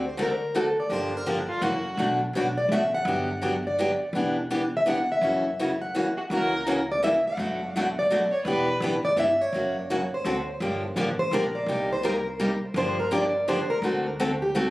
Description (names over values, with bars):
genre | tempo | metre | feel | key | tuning
acoustic string swing (jazz manouche) | 167 BPM | 3/4 | swing 63% on 8ths | B minor, G minor from 10.6 s | A4 = 440 Hz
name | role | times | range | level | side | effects
picked plugged-in steel-string acoustic guitar | melody | 0.0-14.7 s | F#4 to F#5 | -26 LUFS | equal | tape echo
picked steel-string acoustic guitar | accompaniment | 0.0-14.7 s | B2 to A4 | -26 LUFS | equal | none
upright bass | bass | 0.0-14.7 s | E1 to D2 | -35 LUFS | equal | none
warm violin | second line | 1.5-2.0, 6.2-8.9 s | F4 to C#5 | -29 LUFS | right 1 dB | none
room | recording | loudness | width
light reverb | recorded on a phone in the room, club reverb, compression | -23 LUFS | side -18 dB against mid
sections
0.0-2.0 A section; 2.0-10.6 B section; 10.6-14.7 C section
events
steel-string acoustic guitar solo 10.6-14.7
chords
0.0 D7; 0.9 Gm7; 1.6 F#7; 2.0 Bm7; 3.1 Gmaj7; 4.1 Em7; 5.2 F#7; 7.4 Bm7/F#; 8.5 Em7; 9.5 F#; 10.2 D7; 10.6 Gm7; 11.7 Cm7; 12.8 Gm7; 13.8 D7